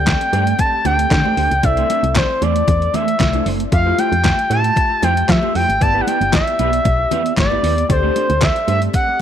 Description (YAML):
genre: early-eighties boogie funk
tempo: 115 BPM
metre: 4/4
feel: straight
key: G major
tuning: A4 = 440 Hz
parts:
  - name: expressive portamento lead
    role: melody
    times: 0.0-9.2 s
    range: C5 to A5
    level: -17 LUFS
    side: left 1 dB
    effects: chorus
  - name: funky polysynth comp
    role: accompaniment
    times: 0.0-9.2 s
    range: A3 to E5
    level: -27 LUFS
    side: left 12 dB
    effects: chorus, phaser
  - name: woody FM bass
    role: bass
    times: 0.0-8.9 s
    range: F#1 to F3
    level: -19 LUFS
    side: equal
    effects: none
  - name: detuned 8-bit digital drum machine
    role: drums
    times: 0.1-9.1 s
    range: handclaps, hi-hat, kick drum, snare drum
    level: -20 LUFS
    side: equal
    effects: overdrive
  - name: congas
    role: percussion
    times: 0.1-9.1 s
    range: none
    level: -26 LUFS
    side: left 12 dB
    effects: none
  - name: mellow electric guitar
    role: riff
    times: 0.2-9.1 s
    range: A3 to C5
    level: -24 LUFS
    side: right 13 dB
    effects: analog chorus
room: light reverb, digital ambience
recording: 1960s-style stereo with parts hard left and right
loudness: -14 LUFS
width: side -9 dB against mid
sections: 0.0-9.2 A section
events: none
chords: 0.0 D7sus4; 1.6 C69; 3.7 Fmaj9; 5.8 G6; 7.9 D7sus4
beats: 0.07 0.59 1.11 | 1.64 2.16 2.68 3.20 | 3.72 4.24 4.76 5.29 | 5.81 6.33 6.85 7.37 | 7.90 8.42 8.94